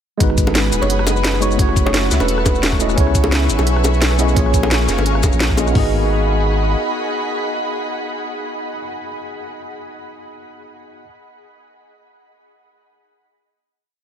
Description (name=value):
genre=liquid drum and bass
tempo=173 BPM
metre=4/4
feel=swing 54% on 16ths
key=G# minor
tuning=A4 = 439 Hz
part: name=tine electric piano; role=accompaniment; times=0.2-11.1 s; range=G#3 to D#5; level=-22 LUFS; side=equal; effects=overdrive, fast stereo tremolo
part: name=ethereal airy pad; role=sustained chords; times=0.2-8.8 s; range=G#4 to C#6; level=-24 LUFS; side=equal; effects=ensemble chorus, built-in reverb, sidechain pumping
part: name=warm sub bass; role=bass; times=0.2-6.8 s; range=D#1 to C#2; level=-18 LUFS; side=equal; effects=none
part: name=breakbeat sampler-style drum kit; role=drums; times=0.2-5.8 s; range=hi-hat, kick drum, toms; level=-17 LUFS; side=equal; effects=none
part: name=garage drum kit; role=drums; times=0.2-5.7 s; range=hi-hat, rim click, shaker, snare drum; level=-21 LUFS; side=equal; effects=none
part: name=bongos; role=percussion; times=0.5-5.7 s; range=none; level=-24 LUFS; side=left 1 dB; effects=none
part: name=soft struck synth lead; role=melody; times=0.8-2.6 s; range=B4 to C#5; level=-26 LUFS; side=equal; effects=chorus, dub echo
room=digital ambience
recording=none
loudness=-14 LUFS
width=side -9 dB against mid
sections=0.2-5.8 drop; 5.8-8.5 final chord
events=drop 0.2-5.8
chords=0.2 G#m7; 1.6 F#m7; 3.0 C#m7; 4.4 A#m7; 5.8 G#m7